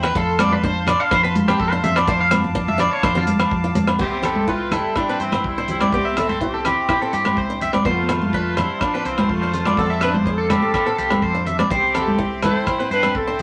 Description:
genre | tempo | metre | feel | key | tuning
highlife guitar band | 125 BPM | 4/4 | straight | C major | A4 = 441 Hz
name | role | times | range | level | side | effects
picked swing-style acoustic guitar | accompaniment | 0.0-13.4 s | G3 to F4 | -31 LUFS | equal | none
accordion | sustained chords | 0.0-13.4 s | E5 to D6 | -31 LUFS | equal | light tremolo tuning
fingered electric bass | bass | 0.0-13.4 s | C2 to G2 | -29 LUFS | equal | none
cloth-damped thuddy drum kit | drums | 0.0-13.4 s | crash cymbal, hi-hat, kick drum, rim click | -29 LUFS | equal | none
agogo bells | percussion | 0.0-13.1 s | none | -28 LUFS | equal | none
electric guitar at the edge of break-up | arpeggios | 0.1-13.4 s | F4 to F5 | -24 LUFS | equal | tremolo
congas | percussion | 0.4-13.4 s | none | -26 LUFS | equal | none
clear horn section | melody | 4.0-13.4 s | E3 to C5 | -27 LUFS | equal | none
room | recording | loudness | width
wet studio reverb, RT60 0.6 s | none | -19 LUFS | mono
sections
0.0-4.0 A section; 4.0-13.4 B section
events
clean electric guitar solo 0.0-4.0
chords
0.2 F; 4.0 C; 7.9 F; 11.7 C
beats
| 0.16 0.64 1.12 1.60 | 2.08 2.56 3.04 3.52 | 4.00 4.48 4.96 5.44 | 5.92 6.41 6.89 7.37 | 7.85 8.33 8.81 9.30 | 9.78 10.26 10.74 11.22 | 11.71 12.19 12.67 13.15

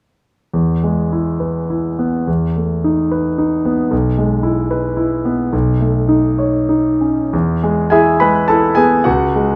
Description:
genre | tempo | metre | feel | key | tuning
classical, romantic character piece for solo piano | 88-116 BPM | 3/4 | rubato | E major | A4 = 440 Hz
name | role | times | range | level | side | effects
bright concert grand piano | solo | 0.5-9.6 s | B1 to B5 | -16 LUFS | equal | none
room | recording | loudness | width
light reverb | close, detailed microphones | -16 LUFS | mono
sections
0.5-7.3 A section; 7.3-9.6 B section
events
none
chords
0.5 E; 2.3 B7/E; 3.9 E/B; 5.5 B9; 7.3 E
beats
| 0.54 1.12 1.70 | 2.28 2.84 3.38 | 3.92 4.44 4.97 | 5.53 6.08 6.69 | 7.33 7.92 8.50 | 9.07

